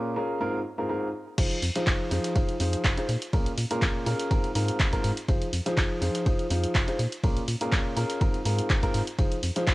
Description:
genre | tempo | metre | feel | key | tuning
piano house | 123 BPM | 4/4 | swing 54% on 16ths | F minor | A4 = 440 Hz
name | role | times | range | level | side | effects
warm upright piano | riff | 0.0-9.7 s | Ab2 to C5 | -29 LUFS | equal | sidechain pumping, cassette tape
organ-like FM bass | bass | 1.4-9.7 s | F1 to Bb2 | -29 LUFS | equal | sidechain pumping
dusty soul sampler-style drum kit | drums | 1.4-9.7 s | hi-hat, snare drum | -42 LUFS | equal | none
electronic kick drum | drums | 1.4-9.7 s | none | -26 LUFS | equal | cassette tape
punchy analog drum machine | drums | 1.4-9.7 s | crash cymbal, handclaps, hi-hat, ride cymbal | -32 LUFS | equal | cassette tape
room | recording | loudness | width
little or no reverb | home recording on cassette | -24 LUFS | side -19 dB against mid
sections
0.0-1.4 A section; 1.4-9.7 B section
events
break 0.0-1.4; drop 1.4-9.7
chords
0.4 Ab69; 1.4 Fm7; 3.1 Bbm7; 4.3 Ab69; 5.3 Fm7; 7.0 Bbm7; 8.2 Ab69; 9.2 Fm7

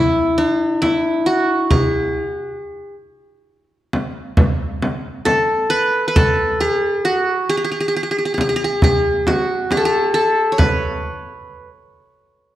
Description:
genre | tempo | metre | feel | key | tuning
Arabic maqam ensemble | 135 BPM (eighths) | 10/8 | straight | unclear | A4 = 440 Hz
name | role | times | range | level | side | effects
qanun | melody | 0.0-11.7 s | D4+50c to C#5 | -16 LUFS | equal | none
frame drum | percussion | 0.8-10.8 s | none | -19 LUFS | equal | none
room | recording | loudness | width
wet recital hall reverb, RT60 1.5 s | none | -15 LUFS | side -13 dB against mid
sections
0.0-12.6 A section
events
none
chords
none

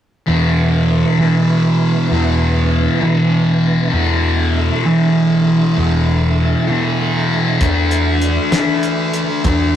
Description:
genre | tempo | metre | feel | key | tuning
psychedelic rock | 65 BPM (dotted quarters) | 6/8 | straight | unclear | A4 = 438 Hz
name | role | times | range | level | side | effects
tonewheel organ | sustained chords | 0.3-9.8 s | E3 to E5 | -25 LUFS | right 5 dB | overdrive, chorus vibrato, fast rotary speaker
thick fuzz guitar | riff | 0.3-9.8 s | E2 to D4 | -14 LUFS | equal | distortion, phaser
growling picked electric bass | bass | 0.3-9.8 s | E2 to E3 | -18 LUFS | equal | overdrive
cloth-damped thuddy drum kit | drums | 7.6-9.6 s | hi-hat, kick drum, snare drum | -20 LUFS | equal | none
room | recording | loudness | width
moderate studio reverb, RT60 0.6 s | rough rehearsal-room recording, tube saturation | -13 LUFS | side -10 dB against mid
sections
0.3-9.8 A section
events
none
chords
0.3 E7sus4; 7.6 Dsus2/E

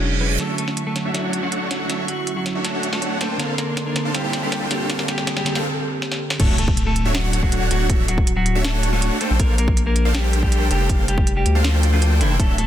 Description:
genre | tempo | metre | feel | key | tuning
future bass | 160 BPM | 4/4 | half-time | unclear | A4 = 441 Hz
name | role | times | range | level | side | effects
clean electric guitar | melody | 0.0-12.7 s | E3 to Bb4 | -26 LUFS | left 1 dB | sidechain pumping, digital delay
glassy digital keys | accompaniment | 0.0-6.4 s | D3 to A4 | -27 LUFS | right 2 dB | chorus, sidechain pumping, dub echo
clear symphonic string section | sustained chords | 0.0-5.6 s | E3 to C#6 | -34 LUFS | left 1 dB | sidechain pumping
saturated sub bass | bass | 0.0-12.7 s | D1 to D2 | -19 LUFS | equal | sidechain pumping, high-pass filter
reverse cymbal, riser and impact | sound effects | 0.0-7.9 s | none | -29 LUFS | right 1 dB | none
supersaw chords | riff | 0.4-12.5 s | A3 to G5 | -26 LUFS | equal | wide subtle chorus, sidechain pumping, low-pass filter
trap drum kit | drums | 0.4-12.7 s | crash cymbal, hi-hat, snare drum | -26 LUFS | right 1 dB | high-pass filter on snare, high-pass filter on hats, high-pass filter on cymbals
electronic kick drum | drums | 6.4-12.5 s | none | -19 LUFS | equal | none
room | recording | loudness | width
light reverb | dense, heavily limited modern master | -18 LUFS | side -11 dB against mid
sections
0.4-6.4 A section; 6.4-12.7 B section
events
reverse cymbal 0.0-0.4; build-up 0.4-6.4; drum fill 0.4-5.6, 6.0-6.4; riser 0.4-5.6; break 5.6-6.4; drop 6.4-12.7; impact 6.4-7.9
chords
0.4 Dmaj9; 3.2 Bbmaj9; 6.4 Dmaj9; 9.2 Bbmaj9

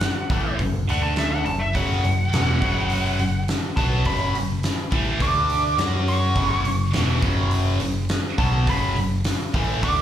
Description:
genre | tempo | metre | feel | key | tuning
hard rock | 104 BPM | 4/4 | straight | F# minor | A4 = 442 Hz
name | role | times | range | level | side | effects
nasal lead guitar with a parked wah | melody | 0.0-10.0 s | E5 to D6 | -26 LUFS | equal | overdrive, slapback echo
huge arena drum kit | drums | 0.0-10.0 s | hi-hat, kick drum, snare drum | -26 LUFS | equal | none
distorted electric guitar | riff | 0.3-10.0 s | E2 to F#4 | -30 LUFS | left 10 dB | overdrive
overdriven electric guitar | riff | 0.3-10.0 s | E2 to F#4 | -29 LUFS | right 7 dB | phaser
overdriven picked electric bass | bass | 0.3-10.0 s | E1 to F#2 | -24 LUFS | equal | none
heavy high-gain guitar | riff | 1.7-10.0 s | E2 to F#4 | -31 LUFS | equal | distortion
room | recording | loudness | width
small room ambience | live gig heard through the venue's PA, club reverb | -19 LUFS | side -10 dB against mid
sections
0.0-10.0 A section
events
lead electric guitar solo 0.0-10.0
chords
0.0 F#m; 0.9 D5; 1.5 F#m; 5.2 D5; 5.8 F#m

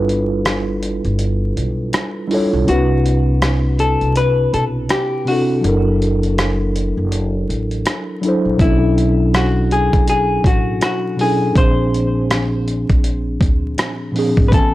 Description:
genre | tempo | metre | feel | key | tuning
lo-fi hip hop | 81 BPM | 4/4 | swing 60% on 16ths | unclear | A4 = 438 Hz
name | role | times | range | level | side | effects
mellow tine electric piano | accompaniment | 0.0-14.7 s | A2 to G#5 | -18 LUFS | equal | medium stereo tremolo, low-pass filter
upright bass | bass | 0.0-14.7 s | F#1 to D2 | -19 LUFS | equal | transformer saturation
dusty soul sampler-style drum kit | drums | 0.1-14.7 s | hi-hat, kick drum, rim click | -18 LUFS | equal | none
vintage hollow-body jazz guitar | melody | 2.7-14.7 s | E4 to C5 | -20 LUFS | left 3 dB | low-pass filter
room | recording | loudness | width
digital ambience | dry, gritty hardware recording, vinyl crackle | -14 LUFS | side -16 dB against mid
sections
0.0-14.7 A section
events
break 0.0-8.6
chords
0.0 G13; 2.7 Cmaj9#11; 5.6 F#7alt; 8.6 Bm11; 11.6 Bb9

